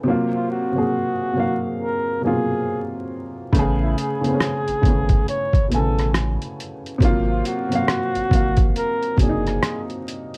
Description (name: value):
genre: lo-fi hip hop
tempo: 69 BPM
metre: 4/4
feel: swing 61% on 16ths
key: unclear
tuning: A4 = 441 Hz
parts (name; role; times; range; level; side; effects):
- dark upright piano; accompaniment; 0.0-10.4 s; Cb3 to G#5; -25 LUFS; equal; low-pass filter
- breathy flugelhorn; melody; 0.3-9.9 s; E4 to C#5; -27 LUFS; equal; low-pass filter
- sub bass with octave; bass; 3.5-9.6 s; Gb1 to A1; -26 LUFS; equal; none
- boom bap sampler-style drum kit; drums; 3.5-10.4 s; hi-hat, kick drum, rim click; -22 LUFS; equal; none
room: light reverb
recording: vinyl crackle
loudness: -21 LUFS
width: mono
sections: 0.0-10.4 A section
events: none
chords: 0.1 Ab13; 3.5 Amaj9; 7.0 Ab13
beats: | 0.05 0.92 1.79 2.66 | 3.53 4.40 5.27 6.14 | 7.01 7.88 8.75 9.62